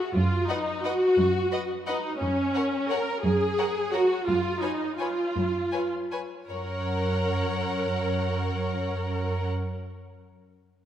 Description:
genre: classical, orchestral ballroom waltz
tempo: 151-189 BPM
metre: 3/4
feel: rubato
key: F# major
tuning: A4 = 440 Hz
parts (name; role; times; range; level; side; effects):
- rich studio viola section; accompaniment; 0.0-9.5 s; C#4 to A#4; -26 LUFS; equal; none
- rich studio cello section; bass; 0.1-9.5 s; F#2; -29 LUFS; right 2 dB; none
- rich studio violin section; melody; 0.5-9.5 s; F#5 to G#5; -39 LUFS; left 3 dB; none
- rich studio violin section; second line; 0.5-9.5 s; A#4 to D#5; -34 LUFS; left 2 dB; none
room: wet scoring stage reverb, RT60 2.0 s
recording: none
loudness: -24 LUFS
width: side -10 dB against mid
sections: 0.0-6.5 A section; 6.5-8.7 B section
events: slowing down 3.8-6.5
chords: 0.2 B/F# (rootless); 2.2 F#; 4.3 N.C.; 6.5 F#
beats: | 0.15 0.49 0.85 | 1.18 1.52 1.87 | 2.20 2.54 2.90 | 3.24 3.58 3.94 | 4.28 4.62 5.00 | 5.35 5.72 6.12 | 6.50 6.87 7.25 | 7.61 7.97 8.35

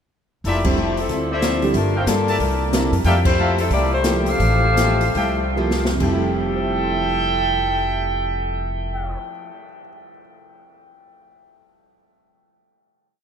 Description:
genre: jazz, big band swing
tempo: 130-185 BPM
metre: 4/4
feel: swing 63% on 8ths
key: F major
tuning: A4 = 442 Hz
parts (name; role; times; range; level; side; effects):
- upright bass; bass; 0.4-9.1 s; F1 to G2; -22 LUFS; equal; none
- open jazz drum kit; drums; 0.4-9.6 s; crash cymbal, cymbal swell, hi-hat, kick drum, snare drum; -26 LUFS; equal; none
- warm saxophone section; melody; 0.5-5.6 s; F3 to F5; -23 LUFS; left 2 dB; none
- picked old ladder-braced acoustic guitar; accompaniment; 0.5-9.6 s; C3 to A4; -27 LUFS; left 4 dB; none
- clear trumpet section; stabs; 0.5-9.2 s; E4 to A5; -25 LUFS; right 2 dB; none
- warm baby grand piano; accompaniment; 0.6-10.2 s; F2 to G6; -26 LUFS; right 4 dB; none
room: wet cathedral reverb, RT60 6.0 s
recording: in a vast, echoing space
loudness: -17 LUFS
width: side -7 dB against mid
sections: 0.4-6.0 A section; 6.0-9.7 final chord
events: band accent 0.6, 3.2; slowing down 3.0-6.0; drum fill 5.6-6.0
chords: 0.4 Fmaj9; 1.1 Dm9; 1.7 Gm9; 2.4 C13; 3.0 Fmaj9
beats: | 0.45 0.77 1.10 1.42 | 1.75 2.07 2.40 2.72 | 3.05 3.38 3.71 4.05 | 4.40 4.77 5.16 5.57 | 6.02 6.48 6.94 7.40 | 7.86 8.32 8.78 9.24

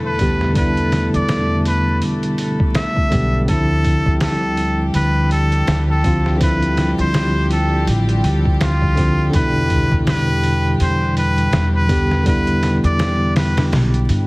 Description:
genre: trip hop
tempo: 82 BPM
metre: 4/4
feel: swing 58% on 16ths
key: unclear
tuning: A4 = 439 Hz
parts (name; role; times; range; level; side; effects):
- bell-like tine electric piano; accompaniment; 0.0-14.3 s; B2 to G4; -19 LUFS; equal; harmonic tremolo, vintage 12-bit sampler grit
- rich chamber string section; sustained chords; 0.0-14.3 s; G3 to A4; -26 LUFS; equal; none
- upright bass; bass; 0.0-14.3 s; A1 to G2; -19 LUFS; equal; none
- trumpet with straight mute; melody; 0.1-13.7 s; F4 to E5; -22 LUFS; equal; dub echo
- trip hop sampler-style drum kit; drums; 0.2-14.3 s; hi-hat, kick drum, snare drum; -21 LUFS; equal; studio reverb
room: little or no reverb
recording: heavily compressed radio sound, multiband compression, vinyl crackle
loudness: -14 LUFS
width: side -24 dB against mid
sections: 0.0-14.3 A section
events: none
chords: 0.0 Em7; 3.5 Dm9; 9.3 Em7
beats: | 0.55 1.29 2.02 2.75 | 3.48 4.21 4.94 5.68 | 6.41 7.14 7.87 8.60 | 9.33 10.07 10.80 11.53 | 12.26 12.99 13.72

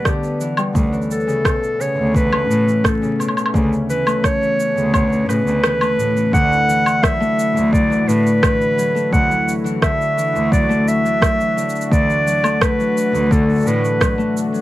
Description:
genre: folktronica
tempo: 86 BPM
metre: 4/4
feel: straight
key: D major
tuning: A4 = 440 Hz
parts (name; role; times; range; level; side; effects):
- mellow clarinet; melody; 0.0-14.4 s; G4 to F#5; -19 LUFS; right 1 dB; none
- warm analog pad; sustained chords; 0.0-14.6 s; D3 to F#5; -27 LUFS; equal; chorus
- Celtic harp; arpeggios; 0.0-14.6 s; B2 to A3; -21 LUFS; left 3 dB; none
- electronic kick drum; drums; 0.1-14.1 s; none; -19 LUFS; equal; none
- electronic rim click, shaker and woodblock; drums; 0.1-14.6 s; none; -21 LUFS; right 1 dB; none
- rich cello; bass; 0.7-13.8 s; D2 to A2; -21 LUFS; equal; none
room: light reverb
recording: vinyl crackle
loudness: -14 LUFS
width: side -15 dB against mid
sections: 0.0-6.3 A section; 6.3-14.6 B section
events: kick drops out 5.6-6.3; band accent 5.6-6.0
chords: 0.0 G6; 0.8 Aadd9/D; 6.3 Dadd9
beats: 0.06 | 0.75 1.45 2.15 2.85 | 3.54 4.24 4.94 5.64 | 6.33 7.03 7.73 8.43 | 9.12 9.82 10.52 11.22 | 11.92 12.61 13.31 14.01

